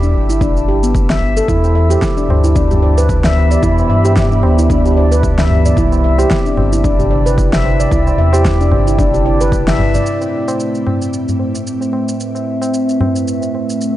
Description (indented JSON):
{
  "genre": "organic downtempo",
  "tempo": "112 BPM",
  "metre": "4/4",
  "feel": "swing 56% on 16ths",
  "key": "unclear",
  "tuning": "A4 = 439 Hz",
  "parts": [
    { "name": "handpan", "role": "arpeggios", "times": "0.0-10.0 s", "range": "B3 to E5", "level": "-17 LUFS", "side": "equal", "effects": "tape echo, shimmer reverb" },
    { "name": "warm sub bass", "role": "bass", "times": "0.0-10.0 s", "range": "G1 to G2", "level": "-14 LUFS", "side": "equal", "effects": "sidechain pumping" },
    { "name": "electronic shaker and snare drum", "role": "drums", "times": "0.0-13.9 s", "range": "none", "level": "-21 LUFS", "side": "equal", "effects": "overdrive" },
    { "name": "electronic kick drum", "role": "drums", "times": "0.4-9.6 s", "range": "none", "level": "-18 LUFS", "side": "equal", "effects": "overdrive" },
    { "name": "warbly tape-like pad", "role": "sustained chords", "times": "1.8-14.0 s", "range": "A2 to B5", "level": "-18 LUFS", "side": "equal", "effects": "chorus, built-in reverb, sidechain pumping" },
    { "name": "tabla", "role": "percussion", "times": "1.6-13.7 s", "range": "none", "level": "-22 LUFS", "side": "left 1 dB", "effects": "none" }
  ],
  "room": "light reverb",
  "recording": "dry, gritty hardware recording, nothing above 10.5 kHz",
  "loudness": "-11 LUFS",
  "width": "side -14 dB against mid",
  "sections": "0.0-10.1 A section; 10.1-14.0 B section",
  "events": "band accent 9.7",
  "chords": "0.0 Cadd9 (rootless); 1.5 Em; 5.8 Cadd9; 10.1 Amadd9",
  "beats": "0.41 0.95 | 1.49 2.02 2.56 3.09 | 3.63 4.17 4.70 5.24 | 5.77 6.31 6.84 7.38 | 7.92 8.45 8.99 9.52 | 10.06 10.59 11.13 11.66 | 12.20 12.74 13.27 13.81"
}